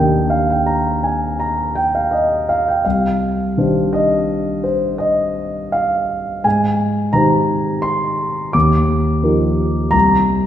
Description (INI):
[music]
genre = classical, impressionist solo piano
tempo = 84 BPM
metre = 5/4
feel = rubato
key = Eb major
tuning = A4 = 438 Hz
[part]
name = dark concert grand piano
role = solo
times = 0.0-10.5 s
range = C2 to D6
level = -14 LUFS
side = equal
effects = none
[sound]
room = wet scoring stage reverb, RT60 1.9 s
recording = heard from further back in the room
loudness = -14 LUFS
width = side -10 dB against mid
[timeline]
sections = 0.0-10.5 A section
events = none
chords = 0.0 Ebmaj7; 2.8 Cmadd9; 6.4 Abmaj7; 8.5 Ebmaj9; 9.9 C7(no3)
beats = 0.69 1.41 2.13 | 2.85 3.57 4.29 5.01 5.74 | 6.45 7.14 7.85 8.54 9.23 | 9.94